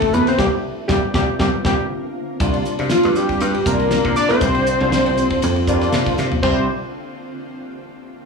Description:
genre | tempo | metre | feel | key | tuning
electric jazz fusion | 119 BPM | 4/4 | swing 55% on 16ths | C mixolydian | A4 = 440 Hz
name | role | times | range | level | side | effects
fat analog lead | melody | 0.0-6.7 s | F4 to D5 | -19 LUFS | equal | slapback echo, plate reverb
barky tine electric piano | accompaniment | 0.0-6.7 s | F#3 to C5 | -24 LUFS | left 2 dB | overdrive, ensemble chorus, plate reverb, slapback echo
shimmering ambient pad | sustained chords | 0.0-6.7 s | C#3 to F4 | -26 LUFS | left 1 dB | chorus, built-in reverb, plate reverb
dry thumbed slap bass | bass | 0.0-6.7 s | C2 to C3 | -21 LUFS | right 1 dB | none
damped 70s drum kit | drums | 0.0-6.6 s | crash cymbal, hi-hat, kick drum, ride cymbal, snare drum, toms | -24 LUFS | equal | none
room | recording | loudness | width
moderate club reverb, RT60 0.7 s | live gig heard through the venue's PA, club reverb, small room ambience | -16 LUFS | side -4 dB against mid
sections
0.0-2.4 A section; 2.4-6.4 B section; 6.4-8.3 C section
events
band accent 0.4-2.4; drum fill 2.2, 6.2; tine electric piano fill 5.7-6.4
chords
0.4 C9sus4; 6.4 C

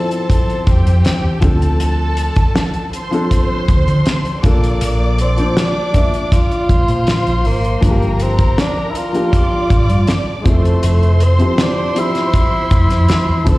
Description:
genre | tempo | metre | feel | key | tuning
lush 1970s-style soul | 80 BPM | 4/4 | straight | unclear | A4 = 439 Hz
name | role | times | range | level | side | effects
breathy tenor saxophone | melody | 0.0-13.6 s | Ab3 to F4 | -20 LUFS | equal | plate reverb
warm studio string section | second line | 0.0-13.6 s | G4 to D6 | -24 LUFS | right 1 dB | plate reverb, slapback echo, tape echo
dark grand piano | accompaniment | 0.0-13.6 s | F3 to E5 | -22 LUFS | left 1 dB | plate reverb
damped 70s drum kit | drums | 0.1-13.6 s | hi-hat, kick drum, snare drum | -15 LUFS | equal | none
hollow-body short-scale fingered electric bass | bass | 0.7-13.6 s | F1 to D3 | -14 LUFS | equal | none
room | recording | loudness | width
light reverb | live gig heard through the venue's PA, recital hall reverb | -12 LUFS | side -19 dB against mid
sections
0.0-13.6 A section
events
none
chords
0.0 Fmaj7; 1.4 Dm7; 4.4 Bbmaj7; 7.8 Gm7; 10.5 Fmaj7

